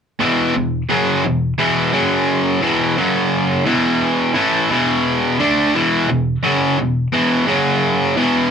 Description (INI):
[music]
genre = rock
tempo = 87 BPM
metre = 4/4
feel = straight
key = unclear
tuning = A4 = 439 Hz
[part]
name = cranked stack guitar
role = solo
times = 0.2-8.5 s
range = E2 to D4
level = -14 LUFS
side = equal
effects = overdrive
[sound]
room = wet small room ambience, RT60 0.5 s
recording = band playing live in one room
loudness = -14 LUFS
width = side -7 dB against mid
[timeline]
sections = 0.2-8.5 A section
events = none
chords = 0.2 E5; 1.9 F#5; 2.6 E5; 3.0 F#5; 3.7 E5; 7.5 F#5; 8.2 E5